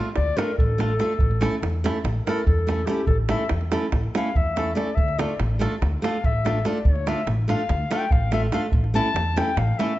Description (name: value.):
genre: balkan folk, Balkan wedding band.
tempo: 287 BPM (eighths).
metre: 9/8.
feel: straight.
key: D harmonic minor.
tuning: A4 = 441 Hz.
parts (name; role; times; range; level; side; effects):
flamenco guitar; accompaniment; 0.0-9.9 s; A3 to A4; -27 LUFS; right 2 dB; none.
davul; percussion; 0.1-9.9 s; none; -26 LUFS; right 1 dB; none.
mellow clarinet; second line; 0.2-10.0 s; G4 to A5; -27 LUFS; left 4 dB; none.
upright bass; bass; 0.2-9.7 s; A1 to E2; -24 LUFS; equal; none.
room: light reverb.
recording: nothing above 7.8 kHz.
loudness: -20 LUFS.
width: side -15 dB against mid.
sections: 0.0-10.0 A section.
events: clarinet solo 0.0-10.0.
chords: 0.0 Dm; 1.2 A; 5.0 Dm; 8.7 A.